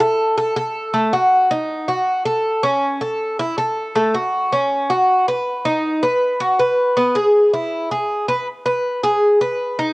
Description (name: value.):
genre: latin.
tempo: 159 BPM.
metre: 4/4.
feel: straight.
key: unclear.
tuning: A4 = 441 Hz.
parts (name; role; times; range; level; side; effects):
Cuban tres; solo; 0.0-9.9 s; A3 to B4; -16 LUFS; equal; none.
room: moderate spring reverb, RT60 2.5 s.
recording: home recording on cassette.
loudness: -16 LUFS.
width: side -23 dB against mid.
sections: 0.0-8.5 A section; 8.5-9.9 B section.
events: none.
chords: none.